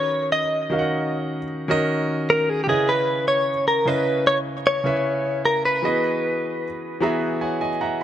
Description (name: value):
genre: R&B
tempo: 76 BPM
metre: 4/4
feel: straight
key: C# dorian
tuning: A4 = 441 Hz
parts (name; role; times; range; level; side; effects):
- direct-recorded clean electric guitar; melody; 0.0-7.2 s; G4 to D#5; -21 LUFS; equal; tape echo
- clear grand piano; accompaniment; 0.0-8.0 s; C#3 to A#5; -24 LUFS; equal; none
room: moderate plate reverb, RT60 2.9 s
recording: nothing above 10.5 kHz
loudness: -19 LUFS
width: side -10 dB against mid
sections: 0.0-8.0 A section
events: grand piano fill 6.6-8.0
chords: 0.0 D#m7; 2.7 C#m7; 5.8 Emaj7